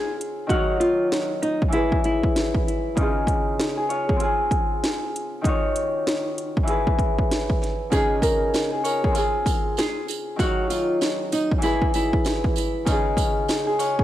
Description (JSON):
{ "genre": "hip hop, boom-bap hip-hop", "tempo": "97 BPM", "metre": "4/4", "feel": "swing 62% on 16ths", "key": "Db major", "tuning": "A4 = 440 Hz", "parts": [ { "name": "nylon-string guitar", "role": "melody", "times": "0.0-2.5, 7.9-12.4 s", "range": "Eb4 to Bb4", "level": "-25 LUFS", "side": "equal", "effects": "high-pass filter, low-pass filter, analog delay" }, { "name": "Celtic harp", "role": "accompaniment", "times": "0.0-14.0 s", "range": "Db3 to F5", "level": "-24 LUFS", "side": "left 1 dB", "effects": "cassette tape, high-pass filter, low-pass filter" }, { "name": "house drum kit", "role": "drums", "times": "0.2-14.0 s", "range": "hi-hat, kick drum, snare drum", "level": "-24 LUFS", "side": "equal", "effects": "overdrive, cassette tape" }, { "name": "sleigh bells", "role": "percussion", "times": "7.9-14.0 s", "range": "none", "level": "-36 LUFS", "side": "right 13 dB", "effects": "none" } ], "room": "light reverb", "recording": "home recording on cassette", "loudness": "-20 LUFS", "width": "side -13 dB against mid", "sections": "0.0-14.0 A section", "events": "none", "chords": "0.5 Ebm7; 1.7 Eadd9; 3.0 Dbadd9; 4.2 Fm; 5.4 Ebm7; 6.7 Eadd9; 7.9 Dbadd9; 9.2 Fm; 10.4 Ebm7; 11.6 Eadd9; 12.9 Dbadd9" }